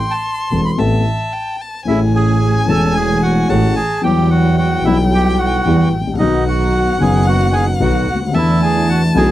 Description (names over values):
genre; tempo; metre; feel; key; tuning
tango; 111 BPM; 4/4; rubato; A major; A4 = 440 Hz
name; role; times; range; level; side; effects
bandoneon; melody; 0.0-9.3 s; D#4 to B5; -19 LUFS; right 2 dB; none
warm violin; second line; 0.0-9.3 s; E5 to C6; -23 LUFS; left 3 dB; none
dark concert grand piano; accompaniment; 0.5-9.3 s; E1 to A4; -17 LUFS; left 4 dB; none
warm double bass; bass; 0.5-9.3 s; E1 to E2; -16 LUFS; right 2 dB; none
dark symphonic string section; stabs; 1.9-9.3 s; F#3 to G#4; -24 LUFS; right 5 dB; none
room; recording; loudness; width
little or no reverb; dry, close 1970s-style studio recording; -12 LUFS; side -14 dB against mid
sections
0.0-1.9 A section; 1.9-9.3 B section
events
none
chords
0.0 Amadd9; 1.9 Amaj7; 4.0 Emadd9; 6.2 B; 8.3 E7sus4